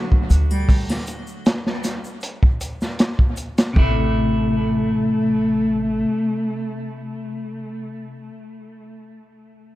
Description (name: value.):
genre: trip hop.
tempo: 78 BPM.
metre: 4/4.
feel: straight.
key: A dorian.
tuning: A4 = 439 Hz.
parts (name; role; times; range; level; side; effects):
clean electric guitar; accompaniment; 0.0-8.3 s; C3 to F#4; -26 LUFS; left 1 dB; harmonic tremolo, vintage 12-bit sampler grit, tape echo.
crunchy breakbeat drum kit; drums; 0.1-3.9 s; hi-hat, kick drum, snare drum; -18 LUFS; equal; none.
upright bass; bass; 0.3-6.0 s; A1 to D2; -22 LUFS; equal; none.
egg shaker and triangle; percussion; 0.3-3.7 s; none; -41 LUFS; left 2 dB; dub echo.
dark cello; melody; 0.5-7.6 s; G3 to A3; -24 LUFS; equal; vintage 12-bit sampler grit, tape echo.
room: small room ambience.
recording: echo-heavy mix.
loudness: -18 LUFS.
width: side -16 dB against mid.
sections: 0.0-3.8 A section; 3.8-6.8 B section.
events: none.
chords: 0.0 D; 3.8 Am.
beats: | 0.69 1.45 2.22 2.99 | 3.76 4.53 5.30 6.07.